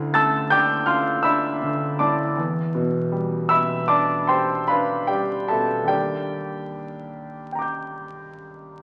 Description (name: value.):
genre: classical, impressionist solo piano.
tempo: 48-56 BPM (dotted quarters).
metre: 9/8.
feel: rubato.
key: unclear.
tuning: A4 = 438 Hz.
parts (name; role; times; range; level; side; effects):
warm concert grand piano; solo; 0.0-8.8 s; D2 to A6; -23 LUFS; equal; none.
room: wet recital hall reverb, RT60 1.7 s.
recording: very old 78 rpm record, vinyl crackle, faint mains hum.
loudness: -22 LUFS.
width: mono.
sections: 0.0-8.8 A section.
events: none.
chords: 0.0 Dmadd9; 2.4 Em7; 5.9 Ebmaj7.